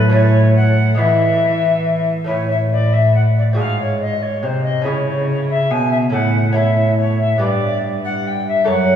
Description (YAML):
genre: classical, renaissance-style consort dance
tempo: 140 BPM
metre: 3/4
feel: straight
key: unclear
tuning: A4 = 440 Hz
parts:
  - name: mellow alto recorder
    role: melody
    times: 0.0-9.0 s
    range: B4 to G#5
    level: -18 LUFS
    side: left 3 dB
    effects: none
  - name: lute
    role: accompaniment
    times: 0.0-9.0 s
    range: F#2 to C#5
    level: -22 LUFS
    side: right 2 dB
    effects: none
  - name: dark cello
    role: bass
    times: 0.0-9.0 s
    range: F#2 to E3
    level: -16 LUFS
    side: equal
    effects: none
room: wet church reverb, RT60 3.9 s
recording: heard from further back in the room, small room ambience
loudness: -14 LUFS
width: side -9 dB against mid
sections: 0.0-2.3 A section; 2.3-9.0 B section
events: none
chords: 0.0 A; 1.0 E; 2.3 A; 3.6 G#7; 4.9 C#m; 6.1 A; 7.4 G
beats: 0.13 0.56 | 0.99 1.42 1.85 | 2.29 2.71 3.14 | 3.57 4.00 4.43 | 4.86 5.28 5.71 | 6.13 6.56 6.99 | 7.41 7.84 8.26 | 8.69